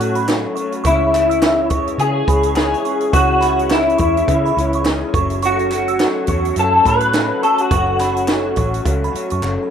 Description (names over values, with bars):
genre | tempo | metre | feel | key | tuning
indie pop, bedroom pop | 105 BPM | 4/4 | swing 60% on 16ths | unclear | A4 = 440 Hz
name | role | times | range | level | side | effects
electric guitar through a small old amp | melody | 0.0-9.4 s | E4 to B4 | -17 LUFS | left 1 dB | ensemble chorus
electric guitar through a small old amp | accompaniment | 0.0-9.7 s | F#2 to C#4 | -23 LUFS | left 4 dB | ensemble chorus, warbly pitch drift
warbly tape-like pad | sustained chords | 0.0-9.7 s | A3 to C#6 | -30 LUFS | right 2 dB | chorus, built-in reverb
vintage muted picked electric bass | bass | 0.0-9.6 s | F#1 to C#3 | -22 LUFS | equal | none
compact cocktail drum kit | drums | 0.0-9.4 s | hi-hat, kick drum, snare drum | -21 LUFS | right 1 dB | none
glassy synth bell | second line | 0.2-9.4 s | B5 to E6 | -25 LUFS | right 7 dB | lush chorus, digital delay
group handclap | percussion | 0.3-9.6 s | none | -33 LUFS | equal | none
room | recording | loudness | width
light reverb | rough home demo mix | -14 LUFS | side -8 dB against mid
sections
0.0-9.7 A section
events
drum fill 9.4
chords
0.0 F#m; 0.8 C#m; 5.1 F#m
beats
0.27 | 0.84 1.42 1.99 2.56 | 3.13 3.70 4.28 4.85 | 5.42 5.99 6.56 7.14 | 7.71 8.28 8.85 9.43